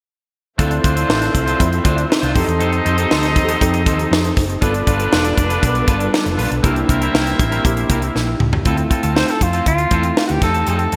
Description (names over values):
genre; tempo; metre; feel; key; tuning
polished 1980s jazz-funk pop; 119 BPM; 4/4; straight; D minor; A4 = 440 Hz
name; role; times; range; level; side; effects
clear horn section; second line; 0.6-8.4 s; C4 to E5; -25 LUFS; equal; none
tine electric piano; accompaniment; 0.6-11.0 s; A3 to C5; -25 LUFS; equal; overdrive, lush chorus
dark studio string section; sustained chords; 0.6-8.6 s; C3 to E5; -30 LUFS; equal; none
electric guitar at the edge of break-up; riff; 0.6-11.0 s; C4 to C5; -26 LUFS; equal; subtle chorus
hollow-body short-scale fingered electric bass; bass; 0.6-11.0 s; E1 to F2; -23 LUFS; equal; none
crisp fusion drum kit; drums; 0.6-11.0 s; hi-hat, kick drum, snare drum, toms; -20 LUFS; equal; gated reverb
breathy alto saxophone; melody; 9.2-11.0 s; F4 to C5; -22 LUFS; equal; none
room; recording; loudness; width
moderate lush hall reverb, RT60 2.6 s; bright 1980s-style digital production; -17 LUFS; mono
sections
0.6-8.7 A section; 8.7-11.0 B section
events
drum fill 8.2-8.7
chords
0.6 Dm7; 2.4 F7; 4.6 G7; 6.6 C7; 8.7 Dm7; 10.4 F7